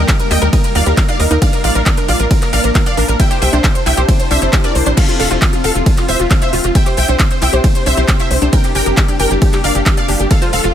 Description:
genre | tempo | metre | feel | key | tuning
uplifting trance | 135 BPM | 4/4 | straight | unclear | A4 = 440 Hz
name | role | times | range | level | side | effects
wide unison pluck | melody | 0.0-10.7 s | F4 to G5 | -18 LUFS | equal | ensemble chorus, sidechain pumping
plucky unison lead | second line | 0.0-10.7 s | F4 to G5 | -24 LUFS | right 1 dB | sidechain pumping, ping-pong delay
shimmering ambient pad | sustained chords | 0.0-10.7 s | C3 to G4 | -22 LUFS | left 2 dB | chorus, built-in reverb, sidechain pumping
wide unison pluck | arpeggios | 0.0-10.7 s | D4 to Eb6 | -23 LUFS | equal | sidechain pumping, ping-pong delay
tight sequencer bass | bass | 0.0-10.7 s | F1 to Eb2 | -16 LUFS | equal | sidechain pumping
electronic kick drum | drums | 0.1-10.4 s | none | -14 LUFS | equal | none
techno drum kit | drums | 0.1-10.7 s | crash cymbal, handclaps, hi-hat, ride cymbal | -20 LUFS | equal | sidechain pumping on hats, sidechain pumping on cymbals
room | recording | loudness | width
digital ambience | none | -11 LUFS | side -10 dB against mid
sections
0.0-10.7 A section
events
none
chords
0.0 Eb; 1.4 Bb; 3.2 Cadd9; 5.0 F; 6.8 Cadd9; 8.5 Gm

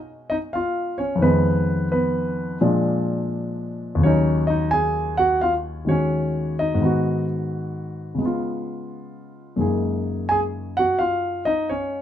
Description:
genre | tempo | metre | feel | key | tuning
solo jazz | 86 BPM | 4/4 | swing 67% on 8ths | Eb minor | A4 = 440 Hz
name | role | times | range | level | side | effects
warm concert grand piano | solo | 0.0-12.0 s | Eb2 to Ab5 | -20 LUFS | equal | none
room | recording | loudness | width
light reverb | minimal, uncompressed stereo recording | -20 LUFS | side -10 dB against mid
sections
0.0-9.6 A section; 9.6-12.0 B section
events
none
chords
0.0 Bsus2; 1.2 Fm7b5; 2.6 Bb7; 4.0 Ebm7; 6.8 Abm7; 8.2 Db7; 9.6 F#maj13

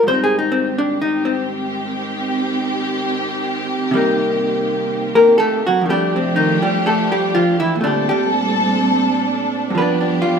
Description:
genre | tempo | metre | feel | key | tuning
jazz ballad | 62 BPM | 4/4 | swing 66% on 8ths | unclear | A4 = 438 Hz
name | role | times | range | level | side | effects
vintage hollow-body jazz guitar | accompaniment | 0.0-10.4 s | F2 to C5 | -16 LUFS | equal | none
warm studio string section | sustained chords | 0.0-10.4 s | Eb3 to A4 | -20 LUFS | right 1 dB | none
room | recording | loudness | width
wet echo chamber reverb, RT60 1.9 s | minimal, uncompressed stereo recording | -15 LUFS | side -6 dB against mid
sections
0.0-10.4 A section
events
none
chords
0.0 Abmaj7; 3.9 Cm7; 5.8 F13; 7.8 Bbmaj13; 9.7 G7

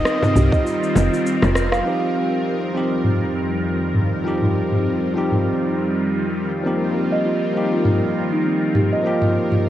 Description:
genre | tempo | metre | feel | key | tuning
organic downtempo | 100 BPM | 4/4 | swing 57% on 16ths | unclear | A4 = 441 Hz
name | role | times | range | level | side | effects
breathy flute-like synth lead | melody | 0.0-1.3 s | Eb5 | -29 LUFS | equal | chorus, ping-pong delay
bowed-like drone | sustained chords | 0.0-9.7 s | F2 to Bb4 | -23 LUFS | right 1 dB | built-in reverb, phaser, sidechain pumping
steel tongue drum | arpeggios | 0.0-1.8, 6.7-9.6 s | C4 to F5 | -24 LUFS | right 1 dB | tape echo
woody FM bass | bass | 0.0-1.8 s | F1 to C2 | -18 LUFS | equal | sidechain pumping
organic electronic drum kit | drums | 0.1-9.6 s | cabasa, rim click, toms | -22 LUFS | equal | low-pass filter on perc, low-pass filter on snare, low-pass filter on toms, low-pass filter on room
frame drum | percussion | 0.2-1.5 s | none | -24 LUFS | left 2 dB | none
electronic kick drum | drums | 0.5-0.6 s | none | -20 LUFS | equal | none
bell-like tine electric piano | accompaniment | 1.8-9.7 s | F3 to G4 | -22 LUFS | left 1 dB | sidechain pumping, tape echo
room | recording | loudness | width
light reverb | worn, warbling old tape, cassette tape, warbly pitch drift | -17 LUFS | side -12 dB against mid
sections
0.0-1.9 A section; 1.9-9.7 B section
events
kick drops out 1.3-1.9; drum fill 1.4-1.9; filter sweep on drum 1.9-9.7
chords
0.0 Eb69; 1.9 Eb69/F; 6.7 F9sus4

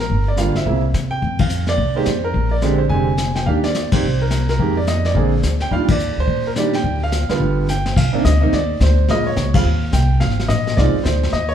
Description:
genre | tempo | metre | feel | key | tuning
jazz piano trio | 214 BPM | 4/4 | swing 62% on 8ths | Eb major, C minor from 8.0 s | A4 = 440 Hz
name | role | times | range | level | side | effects
clear grand piano | melody | 0.0-11.5 s | C3 to Ab5 | -20 LUFS | right 3 dB | none
upright bass | bass | 0.0-11.5 s | F1 to C3 | -18 LUFS | equal | none
vintage brush drum kit | drums | 0.1-11.5 s | brushed snare drum, crash cymbal, hi-hat, kick drum, ride cymbal, snare drum | -22 LUFS | left 3 dB | none
room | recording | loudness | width
moderate large studio reverb, RT60 1.3 s | heard from further back in the room | -15 LUFS | side -9 dB against mid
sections
0.0-8.0 A section; 8.0-11.5 B section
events
band accent 1.4, 3.9, 5.9, 9.5; drum fill 7.7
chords
0.1 Gm7; 0.7 C7b9; 1.2 Fsus2; 2.3 Bb13; 3.5 Ebmaj7; 4.0 Bbsus2/C; 4.6 Fm11; 5.2 Bb9; 5.7 Ebmaj9; 6.8 Dmadd11; 7.4 G7; 8.0 Cmadd9; 9.1 Bbm7; 9.6 Eb69; 10.2 Ab6

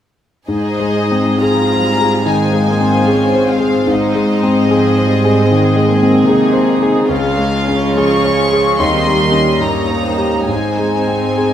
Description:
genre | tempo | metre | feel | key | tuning
classical | 62-77 BPM | 4/4 | rubato | Ab major | A4 = 440 Hz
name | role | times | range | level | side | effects
clear concert grand piano | melody | 0.5-11.5 s | Db2 to Db5 | -14 LUFS | left 1 dB | none
warm symphonic violin section | melody | 0.5-11.5 s | Eb5 to Db6 | -20 LUFS | left 3 dB | none
warm symphonic violin section | second line | 0.5-11.5 s | Eb4 to Eb5 | -22 LUFS | left 1 dB | none
dark symphonic viola section | accompaniment | 0.5-11.5 s | F3 to F4 | -20 LUFS | equal | none
warm symphonic cello section | bass | 0.5-11.5 s | G2 to Eb3 | -20 LUFS | right 4 dB | none
room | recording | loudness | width
moderate concert hall reverb, RT60 1.7 s | none | -11 LUFS | side -10 dB against mid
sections
0.5-11.5 A section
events
none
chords
0.5 Ab; 7.1 Db; 8.8 Eb7; 10.5 Ab

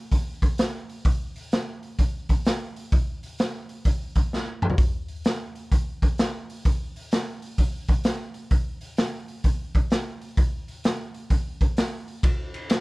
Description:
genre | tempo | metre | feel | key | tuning
rock | 129 BPM | 4/4 | swing 66% on 8ths | none | none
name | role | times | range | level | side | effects
raw garage drum kit | drums | 0.1-12.8 s | hi-hat, kick drum, ride cymbal, snare drum, toms | -23 LUFS | equal | none
room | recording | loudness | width
little or no reverb | none | -23 LUFS | side -24 dB against mid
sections
0.0-12.2 A section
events
drum fill 4.3-4.8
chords
none

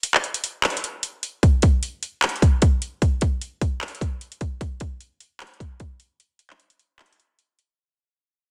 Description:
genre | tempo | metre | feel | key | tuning
hip hop | 151 BPM | 4/4 | half-time | none | none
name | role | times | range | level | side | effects
trap drum kit | drums | 0.0-7.7 s | handclaps, hi-hat, kick drum | -22 LUFS | equal | none
room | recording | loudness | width
digital ambience | dense, heavily limited modern master | -23 LUFS | mono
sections
0.0-7.8 A section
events
break 0.0-1.4; fade-out 0.0-7.8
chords
none

